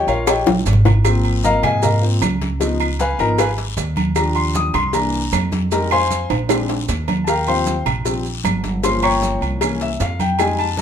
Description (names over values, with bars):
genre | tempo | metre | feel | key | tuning
Afro-Cuban jazz | 154 BPM | 4/4 | straight | Eb major | A4 = 440 Hz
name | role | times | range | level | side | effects
warm grand piano | accompaniment | 0.0-10.8 s | E3 to Eb6 | -19 LUFS | left 3 dB | none
upright bass | bass | 0.1-10.8 s | G1 to Ab2 | -20 LUFS | right 1 dB | none
agogo bells and timbales | percussion | 0.1-10.8 s | none | -26 LUFS | right 8 dB | none
guiro | percussion | 0.1-10.8 s | none | -34 LUFS | left 7 dB | none
maracas | percussion | 0.1-10.8 s | none | -32 LUFS | right 9 dB | none
claves | percussion | 0.3-10.6 s | none | -30 LUFS | right 6 dB | none
congas | percussion | 0.3-10.8 s | none | -25 LUFS | right 2 dB | none
cowbell and bongos | percussion | 0.3-10.8 s | none | -23 LUFS | left 4 dB | none
room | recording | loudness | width
wet club reverb, RT60 0.7 s | minimal, uncompressed stereo recording | -16 LUFS | side -8 dB against mid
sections
0.0-7.3 A section; 7.3-10.8 A section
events
grand piano solo 0.0-10.8; drum fill 0.3-1.1, 6.3-7.3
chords
0.0 Eb9; 1.1 Ab69; 2.6 Db9; 4.2 Ebmaj9; 4.9 C7; 5.7 Fm7; 6.5 Bb7; 7.3 Eb69; 8.8 Gm7b5; 9.6 C7b9